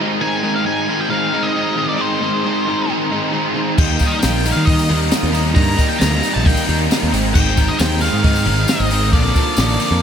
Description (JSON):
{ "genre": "indie rock", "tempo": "135 BPM", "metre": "4/4", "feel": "straight", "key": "unclear", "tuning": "A4 = 440 Hz", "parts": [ { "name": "percussive tonewheel organ", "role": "sustained chords", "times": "0.0-10.0 s", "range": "D4 to Ab5", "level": "-29 LUFS", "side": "equal", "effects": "none" }, { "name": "overdriven electric guitar", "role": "riff", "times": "0.0-10.0 s", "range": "Ab2 to Eb4", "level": "-19 LUFS", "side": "equal", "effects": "analog chorus" }, { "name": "octave-fuzz lead guitar", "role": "melody", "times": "0.2-10.0 s", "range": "C5 to Bb5", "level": "-22 LUFS", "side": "left 1 dB", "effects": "distortion, diffuse ambient delay" }, { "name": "modern bright picked electric bass", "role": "bass", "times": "3.8-10.0 s", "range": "Ab1 to Eb3", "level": "-18 LUFS", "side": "equal", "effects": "none" }, { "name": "compact cocktail drum kit", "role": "drums", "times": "3.8-9.9 s", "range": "crash cymbal, hi-hat, kick drum, snare drum", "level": "-18 LUFS", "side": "equal", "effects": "none" }, { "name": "tambourine", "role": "percussion", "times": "3.8-10.0 s", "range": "none", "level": "-32 LUFS", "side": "left 7 dB", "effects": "none" } ], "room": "moderate huge ambient reverb, RT60 7.2 s", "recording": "dreamy mix soaked in reverb", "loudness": "-14 LUFS", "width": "side -8 dB against mid", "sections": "0.0-10.0 A section", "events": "none", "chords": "0.0 Ab; 3.8 Eb; 7.1 Abmaj7; 9.1 Bbmaj7" }